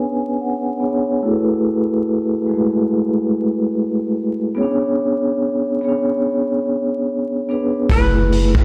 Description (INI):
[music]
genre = lo-fi hip hop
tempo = 72 BPM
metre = 4/4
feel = swing 59% on 16ths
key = B dorian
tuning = A4 = 440 Hz
[part]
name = archtop guitar, miked and amplified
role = melody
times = 0.0-0.8, 7.9-8.6 s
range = G#4 to B4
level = -25 LUFS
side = equal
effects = low-pass filter
[part]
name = vibraphone with soft mallets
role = accompaniment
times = 0.0-8.6 s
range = G#3 to G#5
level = -19 LUFS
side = equal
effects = cassette tape, low-pass filter
[part]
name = saturated sub bass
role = bass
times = 7.9-8.6 s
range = F#1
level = -20 LUFS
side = equal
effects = none
[part]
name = raw garage drum kit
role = drums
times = 7.9-8.6 s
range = hi-hat, kick drum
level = -19 LUFS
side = equal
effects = none
[sound]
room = moderate spring reverb, RT60 1.9 s, small room ambience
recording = vinyl crackle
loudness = -19 LUFS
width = mono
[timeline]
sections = 0.0-7.9 A section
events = filter sweep 0.0-7.9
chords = 0.0 Bm69; 1.2 F#m11; 4.6 Bm69; 7.9 F#m11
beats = 0.39 | 1.22 2.06 2.89 3.72 | 4.56 5.39 6.22 7.06 | 7.89